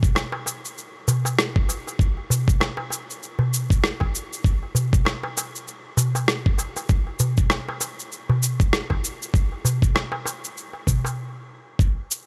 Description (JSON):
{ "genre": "downtempo", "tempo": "98 BPM", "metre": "4/4", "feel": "swing 58% on 16ths", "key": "none", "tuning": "none", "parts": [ { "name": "electronic kick drum", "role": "drums", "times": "0.0-11.9 s", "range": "none", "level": "-22 LUFS", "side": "equal", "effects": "overdrive" }, { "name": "electronic shaker and rim click", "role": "drums", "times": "0.0-12.2 s", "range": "none", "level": "-28 LUFS", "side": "equal", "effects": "overdrive" }, { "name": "darbuka", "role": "percussion", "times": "0.2-11.2 s", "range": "none", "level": "-27 LUFS", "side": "equal", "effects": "none" } ], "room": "digital ambience", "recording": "none", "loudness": "-23 LUFS", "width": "mono", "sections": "0.0-11.8 A section", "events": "stop 11.2-11.8", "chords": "none" }